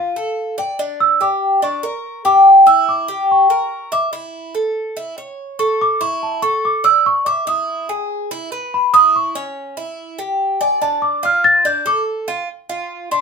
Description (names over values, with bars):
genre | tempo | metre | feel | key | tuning
latin | 144 BPM | 4/4 | straight | D harmonic minor | A4 = 440 Hz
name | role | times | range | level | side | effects
celesta | melody | 0.0-13.2 s | F5 to A6 | -15 LUFS | right 2 dB | none
Cuban tres | arpeggios | 0.0-13.2 s | C#4 to E5 | -17 LUFS | left 1 dB | none
room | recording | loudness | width
moderate small room reverb, RT60 0.5 s | band playing live in one room | -13 LUFS | side -5 dB against mid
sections
0.0-12.5 A section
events
celesta solo 0.0-12.5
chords
0.0 Dm; 0.8 Gm; 2.5 Edim; 4.1 A; 5.8 Asus4; 7.5 E; 9.1 C#dim; 10.8 Dm